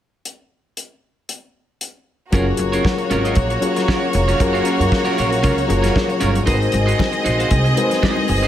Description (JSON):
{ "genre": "disco", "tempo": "116 BPM", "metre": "4/4", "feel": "straight", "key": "F# major", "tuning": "A4 = 440 Hz", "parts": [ { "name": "warm soul drum kit", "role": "drums", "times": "0.3-8.5 s", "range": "hi-hat, kick drum, snare drum", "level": "-22 LUFS", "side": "equal", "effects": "none" }, { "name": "warm studio violin section", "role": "second line", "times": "2.3-8.5 s", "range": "A#3 to D#5", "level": "-20 LUFS", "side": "equal", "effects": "none" }, { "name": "electric guitar at the edge of break-up", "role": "accompaniment", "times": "2.3-8.5 s", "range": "C#4 to E#5", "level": "-25 LUFS", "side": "right 4 dB", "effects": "none" }, { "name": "reed electric piano", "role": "accompaniment", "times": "2.3-8.5 s", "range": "F#3 to C#5", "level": "-22 LUFS", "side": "left 4 dB", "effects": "overdrive, fast tremolo, tube saturation" }, { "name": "upright bass", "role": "bass", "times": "2.3-8.5 s", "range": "E#1 to F#2", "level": "-20 LUFS", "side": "equal", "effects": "none" }, { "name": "congas", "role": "percussion", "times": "6.7-8.4 s", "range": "none", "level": "-29 LUFS", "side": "left 7 dB", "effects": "none" } ], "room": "light reverb, studio ambience", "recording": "none", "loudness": "-15 LUFS", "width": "side -11 dB against mid", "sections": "0.3-2.3 A section; 2.3-8.5 B section", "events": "none", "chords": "0.3 N.C.; 2.3 F#maj7; 6.5 G#7" }